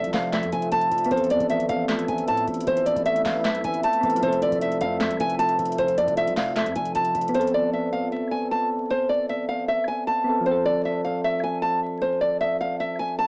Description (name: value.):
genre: hip hop, trap.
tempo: 154 BPM.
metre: 4/4.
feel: half-time.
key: A harmonic minor.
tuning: A4 = 441 Hz.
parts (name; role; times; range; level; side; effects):
nylon-string guitar; melody; 0.0-13.3 s; C5 to A5; -25 LUFS; equal; cassette tape.
soft electric-piano-like synth keys; accompaniment; 0.0-13.3 s; F3 to A4; -31 LUFS; equal; chorus, cassette tape.
deep dark ambient pad; sustained chords; 0.0-7.3 s; F3 to E5; -35 LUFS; equal; chorus, built-in reverb, cassette tape.
long sustained 808-style bass; bass; 0.0-7.3 s; F1 to A2; -39 LUFS; equal; none.
booming analog drum machine; drums; 0.0-7.5 s; handclaps, hi-hat, kick drum, snare drum; -34 LUFS; equal; overdrive, cassette tape.
room: light reverb.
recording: home recording on cassette, vinyl crackle, small speaker sound.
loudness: -24 LUFS.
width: mono.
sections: 0.0-7.3 A section; 7.3-13.3 A section.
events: none.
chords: 0.0 F; 1.1 Amadd9; 4.2 F; 7.3 Amadd9; 10.5 F.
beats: 0.33 0.72 | 1.11 1.50 1.89 2.28 | 2.67 3.06 3.45 3.84 | 4.23 4.62 5.01 5.39 | 5.79 6.17 6.56 6.95 | 7.34 7.73 8.12 8.51 | 8.90 9.29 9.68 10.07 | 10.46 10.85 11.24 11.63 | 12.02 12.41 12.80 13.19.